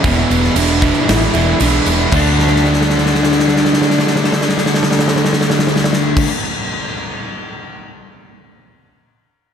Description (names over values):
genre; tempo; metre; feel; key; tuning
rock, shoegaze and dream pop; 115 BPM; 4/4; straight; D lydian; A4 = 440 Hz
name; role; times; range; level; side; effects
breathy flute-like synth lead; melody; 0.0-6.2 s; B3 to E4; -20 LUFS; right 1 dB; chorus, analog delay
overdriven electric guitar; riff; 0.0-6.3 s; E2 to D4; -21 LUFS; equal; none
overdriven semi-hollow guitar; riff; 0.0-6.3 s; E2 to A4; -20 LUFS; right 7 dB; reverse reverb
thick fuzz guitar; riff; 0.0-6.3 s; E2 to D4; -19 LUFS; left 8 dB; distortion, wide subtle chorus
vintage muted fingered electric bass; bass; 0.0-6.2 s; E1 to D2; -18 LUFS; equal; none
huge arena drum kit; drums; 0.0-7.8 s; crash cymbal, kick drum, snare drum; -17 LUFS; equal; none
tambourine; percussion; 0.0-6.2 s; none; -32 LUFS; right 9 dB; none
room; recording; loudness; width
light reverb, small room ambience; none; -12 LUFS; side -8 dB against mid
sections
0.0-2.1 A section; 2.1-6.3 B section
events
drum fill 2.4-6.2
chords
0.0 E7; 2.1 D